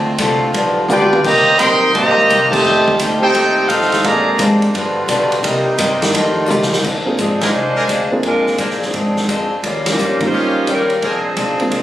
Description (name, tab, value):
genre	jazz, big band swing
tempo	172 BPM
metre	4/4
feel	swing 65% on 8ths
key	Bb mixolydian from 6.8 s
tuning	A4 = 439 Hz
part	picked acoustic archtop guitar	accompaniment	0.0-11.8 s	G2 to G4	-20 LUFS	left 2 dB	none
part	bright trombone section	sustained chords	0.0-6.8 s	C3 to F4	-20 LUFS	equal	none
part	upright bass	bass	0.0-11.8 s	Eb1 to C3	-23 LUFS	equal	none
part	swinging big-band drum kit	drums	0.2-11.8 s	crash cymbal, hi-hat, kick drum, ride cymbal, snare drum, toms	-21 LUFS	equal	none
part	clear trumpet section	melody	0.9-4.4 s	Eb4 to C6	-13 LUFS	right 1 dB	none
part	warm trombone section	second line	0.9-4.4 s	C3 to G4	-18 LUFS	right 1 dB	none
part	dark grand piano	accompaniment	7.1-11.8 s	G3 to Ab4	-19 LUFS	right 2 dB	none
part	mellow saxophone section	melody	7.2-11.8 s	F3 to C5	-18 LUFS	equal	none
part	bright trumpet section	stabs	7.4-11.2 s	Db4 to Ab5	-23 LUFS	right 1 dB	none
room	moderate large studio reverb, RT60 1.3 s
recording	recorded on a phone in the room, studio reverb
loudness	-12 LUFS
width	side -13 dB against mid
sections	0.0-6.8 A section; 6.8-11.8 B section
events	drum fill 0.9-1.2, 6.5-6.8; band accent 2.5, 7.4, 9.8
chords	0.0 Dm7; 0.5 G7; 1.2 Cm7; 2.6 F9; 4.0 Bb9; 4.7 G7; 5.4 Cm7; 6.1 F9; 6.8 Bb9; 9.6 Eb9; 11.0 Bb9